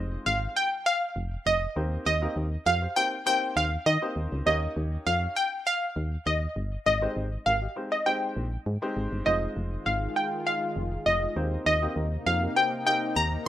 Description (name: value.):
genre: pop.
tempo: 100 BPM.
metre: 4/4.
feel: straight.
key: F minor.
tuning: A4 = 440 Hz.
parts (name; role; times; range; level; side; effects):
glassy wavetable pluck; melody; 0.0-13.4 s; Eb5 to Bb5; -26 LUFS; equal; chorus.
warm baby grand piano; accompaniment; 0.0-13.2 s; Ab3 to Eb5; -35 LUFS; left 1 dB; none.
solid FM bass; bass; 0.0-13.4 s; F1 to Eb3; -29 LUFS; equal; none.
lush unison pad; sustained chords; 9.7-13.5 s; C3 to F4; -36 LUFS; equal; chorus.
room: moderate studio reverb, RT60 0.6 s.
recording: rough home demo mix.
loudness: -25 LUFS.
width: side -12 dB against mid.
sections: 0.0-13.5 A section.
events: none.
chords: 0.0 Fm7; 1.8 Cm7/Eb; 4.5 Eb7; 6.9 Abmaj7; 9.3 Fm7; 11.4 Cm7/Eb.